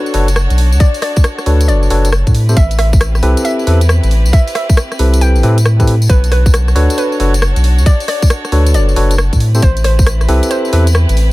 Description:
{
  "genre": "UK garage, two-step garage",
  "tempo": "136 BPM",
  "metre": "4/4",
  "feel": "swing 65% on 16ths",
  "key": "B phrygian",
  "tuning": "A4 = 441 Hz",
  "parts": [
    { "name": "hollow square pluck", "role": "melody", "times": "0.0-10.7 s", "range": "B4 to G5", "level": "-22 LUFS", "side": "equal", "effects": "chorus, digital delay" },
    { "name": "warm chamber violin section", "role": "sustained chords", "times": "0.0-11.3 s", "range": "C4 to C#5", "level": "-25 LUFS", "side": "right 1 dB", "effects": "sidechain pumping" },
    { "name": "tine electric piano", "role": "stabs", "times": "0.0-10.9 s", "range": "C4 to C#5", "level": "-17 LUFS", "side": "left 1 dB", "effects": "digital delay" },
    { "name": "saturated sub bass", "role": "bass", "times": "0.1-11.3 s", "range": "F#1 to A2", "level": "-11 LUFS", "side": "equal", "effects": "sidechain pumping" },
    { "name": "garage drum kit", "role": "drums", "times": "0.1-11.3 s", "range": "hi-hat, rim click, tambourine", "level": "-21 LUFS", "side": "left 1 dB", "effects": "none" },
    { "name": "electronic kick drum", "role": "drums", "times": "0.8-10.1 s", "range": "none", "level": "-9 LUFS", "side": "equal", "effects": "none" }
  ],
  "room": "little or no reverb",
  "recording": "none",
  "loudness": "-9 LUFS",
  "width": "side -19 dB against mid",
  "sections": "0.0-11.3 A section",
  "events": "none",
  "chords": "0.0 Bm9; 2.3 Am9; 6.1 Bm9; 9.4 Am9"
}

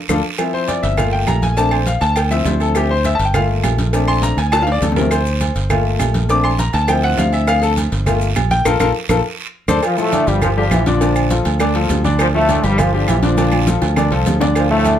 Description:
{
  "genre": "latin, salsa",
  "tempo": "203 BPM",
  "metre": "4/4",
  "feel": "straight",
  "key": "D minor",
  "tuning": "A4 = 440 Hz",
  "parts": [
    { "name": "clear grand piano", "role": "accompaniment", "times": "0.1-15.0 s", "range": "D3 to D6", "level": "-18 LUFS", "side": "left 3 dB", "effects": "none" },
    { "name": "fingered electric bass", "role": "bass", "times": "0.1-14.9 s", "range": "G1 to D2", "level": "-18 LUFS", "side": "right 1 dB", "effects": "none" },
    { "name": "claves", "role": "percussion", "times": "0.1-14.7 s", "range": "none", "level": "-29 LUFS", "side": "right 1 dB", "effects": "none" },
    { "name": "congas", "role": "percussion", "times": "0.1-15.0 s", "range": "none", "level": "-24 LUFS", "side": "right 1 dB", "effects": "none" },
    { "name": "cowbell and bongos", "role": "percussion", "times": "0.1-15.0 s", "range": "none", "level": "-26 LUFS", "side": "left 1 dB", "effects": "none" },
    { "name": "guiro", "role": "percussion", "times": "0.1-15.0 s", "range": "none", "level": "-31 LUFS", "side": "right 7 dB", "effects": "none" },
    { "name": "maracas", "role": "percussion", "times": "0.1-15.0 s", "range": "none", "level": "-34 LUFS", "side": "left 7 dB", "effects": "none" },
    { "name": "timbales and agogo bells", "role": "percussion", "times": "0.1-15.0 s", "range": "none", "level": "-24 LUFS", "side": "right 10 dB", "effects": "none" },
    { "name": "warm trombone section", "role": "melody", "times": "9.8-15.0 s", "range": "G2 to F4", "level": "-18 LUFS", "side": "left 1 dB", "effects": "none" }
  ],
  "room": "light reverb",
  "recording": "none",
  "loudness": "-14 LUFS",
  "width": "side -10 dB against mid",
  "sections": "0.4-9.8 A section; 9.8-15.0 B section",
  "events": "drum fill 0.0-0.4, 4.5-5.1, 9.4-9.8, 13.4-14.6; band accent 0.0-0.4, 8.7-9.8; grand piano solo 0.4-9.8",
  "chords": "0.4 Dm11; 1.0 Gm7; 1.6 Bbmaj7; 2.2 Dm7; 3.3 Gm7; 3.9 Bbmaj7; 4.5 Dm7; 5.7 Gm7; 6.3 Bbmaj7; 6.9 Dm7; 8.1 Gm7; 8.7 Bb5; 9.2 D5; 9.8 Dm; 10.4 Gm7; 11.0 Bbmaj7; 11.6 Dm; 12.8 Gm7; 13.4 Bbmaj7; 14.0 Dm7"
}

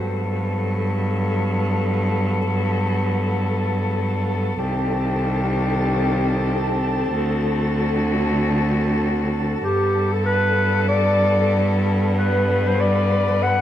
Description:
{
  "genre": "folktronica",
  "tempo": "free time",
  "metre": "none",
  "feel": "none",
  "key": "G major",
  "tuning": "A4 = 440 Hz",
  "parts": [
    { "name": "muted string quartet", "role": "sustained chords", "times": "0.0-13.6 s", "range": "D3 to B4", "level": "-24 LUFS", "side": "left 1 dB", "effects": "low-pass filter" },
    { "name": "kora", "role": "arpeggios", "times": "0.0-1.0 s", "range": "A3 to C5", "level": "-38 LUFS", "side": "right 2 dB", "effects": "none" },
    { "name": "clear cello", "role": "bass", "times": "0.0-13.6 s", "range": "C2 to G2", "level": "-21 LUFS", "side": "equal", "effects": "none" },
    { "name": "flickering grainy texture", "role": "texture", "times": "0.0-13.6 s", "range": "A4 to A5", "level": "-29 LUFS", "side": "left 1 dB", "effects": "built-in reverb" },
    { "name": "warm clarinet", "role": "melody", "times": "9.6-13.6 s", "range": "G4 to F#5", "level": "-21 LUFS", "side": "left 1 dB", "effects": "vintage 12-bit sampler grit, ping-pong delay" }
  ],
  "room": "light reverb, small room reverb",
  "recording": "none",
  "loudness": "-18 LUFS",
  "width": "side -11 dB against mid",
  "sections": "0.0-13.6 A section",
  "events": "none",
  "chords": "0.0 Gmaj9; 4.6 Cm; 7.1 D7; 9.6 Gadd9"
}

